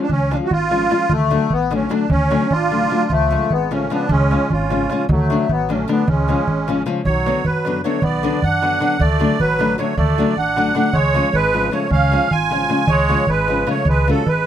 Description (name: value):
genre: balkan folk, Balkan wedding band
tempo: 307 BPM (eighths)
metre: 5/8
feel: straight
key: C# phrygian dominant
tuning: A4 = 441 Hz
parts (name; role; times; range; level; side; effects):
- musette accordion; melody; 0.0-14.5 s; A3 to G#5; -19 LUFS; right 2 dB; none
- nylon-string guitar; accompaniment; 0.0-14.2 s; C#3 to E#4; -21 LUFS; left 4 dB; none
- upright bass; bass; 0.1-14.5 s; G#1 to F#2; -22 LUFS; equal; none
- darbuka; percussion; 0.1-14.4 s; none; -22 LUFS; right 1 dB; none
- trombone with straight mute; second line; 2.5-14.5 s; E#3 to E#4; -25 LUFS; right 5 dB; none
room: light reverb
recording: close, detailed microphones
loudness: -15 LUFS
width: side -10 dB against mid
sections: 0.0-7.0 A section; 7.0-14.5 B section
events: speeding up 0.0-14.5; drum fill 10.2-10.9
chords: 0.0 C#; 1.1 D; 3.1 C#; 5.1 D; 6.1 C#; 7.0 Bm; 9.0 D; 10.9 C#